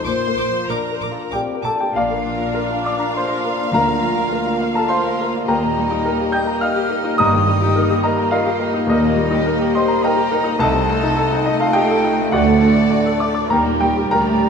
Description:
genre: classical, romantic movement for piano and orchestra.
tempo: 93-108 BPM.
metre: 3/4.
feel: rubato.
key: Bb major.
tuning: A4 = 440 Hz.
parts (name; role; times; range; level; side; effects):
clear grand piano; melody; 0.0-14.5 s; C2 to G6; -18 LUFS; left 1 dB; none.
warm studio violin section; melody; 0.0-14.5 s; Bb4 to D6; -29 LUFS; left 3 dB; none.
rich studio violin section; second line; 0.0-14.5 s; G3 to C6; -29 LUFS; left 1 dB; none.
rich studio viola section; accompaniment; 0.0-14.5 s; G3 to C5; -24 LUFS; right 3 dB; none.
mellow French horn section; sustained chords; 0.0-14.5 s; G3 to G4; -25 LUFS; left 2 dB; none.
warm studio double bass section; bass; 0.0-14.5 s; G1 to Eb2; -28 LUFS; right 4 dB; none.
warm studio cello section; bass; 0.1-14.5 s; C2 to Bb2; -25 LUFS; right 3 dB; none.
silver concert flute; second line; 1.3-14.5 s; Eb5 to G6; -25 LUFS; equal; none.
timpani; percussion; 3.7-4.6 s; D3; -30 LUFS; equal; none.
room: wet scoring stage reverb, RT60 1.9 s.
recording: none.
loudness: -15 LUFS.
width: side -6 dB against mid.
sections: 0.0-1.9 A section; 1.9-14.5 B section.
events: none.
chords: 0.1 Bb; 3.7 Bb/D; 5.5 Eb; 7.2 Eb/G; 8.9 Eb; 10.6 Adim/C; 12.3 D; 13.5 Eb.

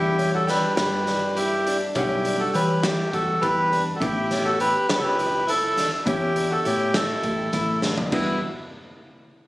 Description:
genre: progressive instrumental, band music in an uneven meter.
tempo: 204 BPM (eighths).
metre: 7/8.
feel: straight.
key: E dorian.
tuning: A4 = 440 Hz.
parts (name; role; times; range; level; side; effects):
melodica; melody; 0.0-8.4 s; E4 to B4; -23 LUFS; equal; none.
edgy alto saxophone; second line; 0.0-8.4 s; B3 to G4; -30 LUFS; equal; none.
vintage hollow-body jazz guitar; accompaniment; 0.0-8.4 s; G3 to F#5; -31 LUFS; right 1 dB; none.
picked twelve-string acoustic guitar; arpeggios; 0.0-8.4 s; B3 to G4; -32 LUFS; left 2 dB; none.
woody fretless electric bass; bass; 0.0-8.4 s; A1 to E3; -29 LUFS; left 1 dB; none.
raw garage drum kit; drums; 0.2-8.3 s; crash cymbal, hi-hat, kick drum, snare drum, toms; -28 LUFS; equal; none.
room: light reverb.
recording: recorded on a phone in the room, studio reverb.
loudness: -20 LUFS.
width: side -18 dB against mid.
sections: 0.0-8.1 A section; 8.1-9.5 B section.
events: drum fill 7.8.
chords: 0.0 Em7; 4.0 A7; 8.1 Em7.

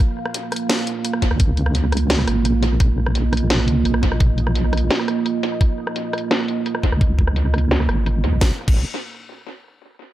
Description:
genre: half-time drum and bass.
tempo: 171 BPM.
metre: 4/4.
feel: half-time.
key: Bb minor.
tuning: A4 = 441 Hz.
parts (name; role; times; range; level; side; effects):
dark analog pad; sustained chords; 0.0-8.6 s; Bb3 to F5; -24 LUFS; right 5 dB; chorus, sidechain pumping.
drum and bass drum kit; drums; 0.3-8.7 s; crash cymbal, hi-hat, rim click, snare drum; -24 LUFS; equal; low-pass filter on snare, low-pass filter on hats, low-pass filter on toms, low-pass filter on cymbals, analog delay.
electronic kick drum; drums; 1.2-8.7 s; none; -17 LUFS; equal; none.
deep soft wobble bass; bass; 1.3-8.8 s; Ab1 to Eb2; -18 LUFS; equal; chorus.
room: light reverb.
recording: echo-heavy mix.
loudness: -17 LUFS.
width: side -14 dB against mid.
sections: 0.0-8.4 A section; 8.4-9.8 B section.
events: filter sweep on drum 0.0-8.4; filter sweep on wobble bass 0.0-8.4.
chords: 0.0 Bb5.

